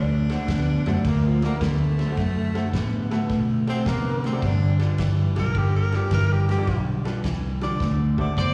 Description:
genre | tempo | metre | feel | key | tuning
electric blues shuffle | 107 BPM | 4/4 | swing 67% on 8ths | G major | A4 = 440 Hz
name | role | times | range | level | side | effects
breathy tenor saxophone | second line | 0.0-8.5 s | F3 to D5 | -32 LUFS | equal | slapback echo
electric guitar through a small old amp | riff | 0.0-8.5 s | G2 to B3 | -28 LUFS | equal | subtle chorus
vintage muted fingered electric bass | bass | 0.0-8.5 s | F#1 to C3 | -26 LUFS | equal | none
bright upright piano | accompaniment | 0.3-8.3 s | D4 to D5 | -39 LUFS | equal | slapback echo
warm soul drum kit | drums | 0.3-8.5 s | kick drum, ride cymbal, snare drum | -34 LUFS | equal | none
overdriven slide guitar | melody | 8.4-8.5 s | D5 | -27 LUFS | equal | none
room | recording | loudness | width
light reverb, studio ambience | live gig heard through the venue's PA, recital hall reverb, small room ambience | -23 LUFS | mono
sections
0.0-8.5 A section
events
tenor saxophone solo 0.0-8.5; drum fill 7.8-8.5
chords
0.0 D7; 4.4 G7; 7.8 D7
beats
0.49 1.05 1.61 | 2.17 2.74 3.30 3.86 | 4.43 4.99 5.55 6.12 | 6.68 7.24 7.81 8.37

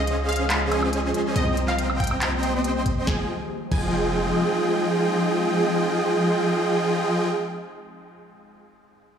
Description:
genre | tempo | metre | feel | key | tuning
future bass | 140 BPM | 4/4 | half-time | F minor | A4 = 440 Hz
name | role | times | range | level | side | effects
wide unison pluck | melody | 0.0-8.0 s | Eb5 to Ab5 | -31 LUFS | left 1 dB | sidechain pumping, digital delay
ethereal airy pad | sustained chords | 0.0-7.3 s | Db3 to F5 | -32 LUFS | left 1 dB | ensemble chorus, built-in reverb, sidechain pumping
supersaw chords | riff | 0.0-7.3 s | F3 to C6 | -23 LUFS | right 1 dB | sidechain pumping, dub echo
warm 808-style bass | bass | 0.0-4.3 s | F1 to Db2 | -27 LUFS | equal | sidechain pumping
trap drum kit | drums | 0.1-3.8 s | crash cymbal, handclaps, hi-hat, snare drum, woodblock | -28 LUFS | equal | none
electronic kick drum | drums | 2.0-3.8 s | none | -25 LUFS | equal | none
room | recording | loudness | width
moderate digital room reverb, RT60 1.1 s | played on a big sound system in a bare room, large studio reverb, small room ambience | -20 LUFS | side -8 dB against mid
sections
0.0-3.1 A section; 3.1-6.5 B section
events
drop 0.0-3.1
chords
0.0 Dbmaj7; 1.4 Cm7; 3.1 Fm9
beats
0.07 0.50 0.93 | 1.36 1.79 2.22 2.65 | 3.07 3.50 3.93 4.36 | 4.79 5.22 5.64 6.07

